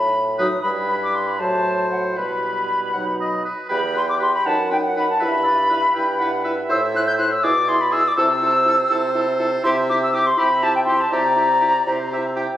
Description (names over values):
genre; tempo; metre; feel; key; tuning
quick classical-period movement for wind quintet; 80 BPM (dotted quarters); 6/8; straight; E minor; A4 = 440 Hz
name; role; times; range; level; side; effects
mellow concert flute; melody; 0.0-12.4 s; F#5 to G6; -19 LUFS; left 1 dB; none
mellow bassoon; bass; 0.0-12.5 s; E2 to C3; -25 LUFS; right 1 dB; none
warm oboe; second line; 0.4-12.5 s; G4 to F#5; -26 LUFS; equal; none
clear clarinet; accompaniment; 0.4-12.5 s; D#4 to G5; -28 LUFS; right 5 dB; none
warm French horn; accompaniment; 0.4-12.5 s; F#3 to G4; -29 LUFS; right 1 dB; none
room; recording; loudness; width
moderate scoring stage reverb, RT60 1.9 s; recorded on a phone in the room, club reverb; -17 LUFS; side -12 dB against mid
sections
0.0-3.7 A section; 3.7-12.6 B section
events
none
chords
0.0 B7/A; 0.6 Em/G; 1.4 F#m7b5/A; 2.2 Em/B; 3.0 B; 3.7 Em; 4.5 B/F#; 5.2 Em/G; 6.7 Am; 7.4 E7/B; 8.2 Am/C; 9.6 C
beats
| 0.64 1.40 | 2.18 2.95 | 3.71 4.46 | 5.21 5.96 | 6.70 7.44 | 8.18 8.91 | 9.65 10.39 | 11.13 11.88